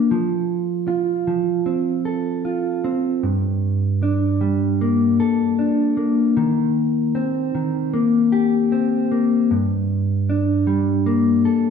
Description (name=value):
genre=rock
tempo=77 BPM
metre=4/4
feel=straight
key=G minor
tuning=A4 = 440 Hz
part: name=mellow electric guitar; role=solo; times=0.0-11.7 s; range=G2 to A4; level=-17 LUFS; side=equal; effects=none
room=wet recital hall reverb, RT60 1.3 s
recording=recorded in a church or concert hall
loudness=-17 LUFS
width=side -6 dB against mid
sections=0.0-11.7 A section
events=none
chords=0.1 F; 3.2 Gmadd9; 6.4 Eb6; 9.5 Gm